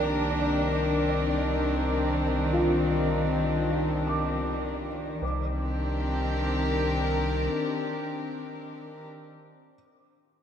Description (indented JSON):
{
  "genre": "ambient",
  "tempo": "free time",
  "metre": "none",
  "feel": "none",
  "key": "C minor",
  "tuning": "A4 = 440 Hz",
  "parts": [
    { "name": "warm chamber string section", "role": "sustained chords", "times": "0.0-9.1 s", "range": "Eb3 to Bb4", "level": "-27 LUFS", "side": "left 1 dB", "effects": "none" },
    { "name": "felt-muted upright piano", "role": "arpeggios", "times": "0.0-10.4 s", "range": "F4 to D6", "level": "-34 LUFS", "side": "equal", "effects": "ensemble chorus, diffuse ambient delay" },
    { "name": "warm sub bass", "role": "bass", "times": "0.0-7.5 s", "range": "C2", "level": "-31 LUFS", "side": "equal", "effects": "none" },
    { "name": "wind-like tuned noise texture", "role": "texture", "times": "0.0-5.2 s", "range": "D5", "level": "-37 LUFS", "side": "right 4 dB", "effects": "built-in reverb" }
  ],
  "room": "wet lush hall reverb, RT60 2.5 s",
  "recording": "dreamy mix soaked in reverb",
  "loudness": "-25 LUFS",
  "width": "side -8 dB against mid",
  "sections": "0.0-5.2 A section; 5.2-8.3 B section",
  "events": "none",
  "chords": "0.0 Cm9",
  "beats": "free time"
}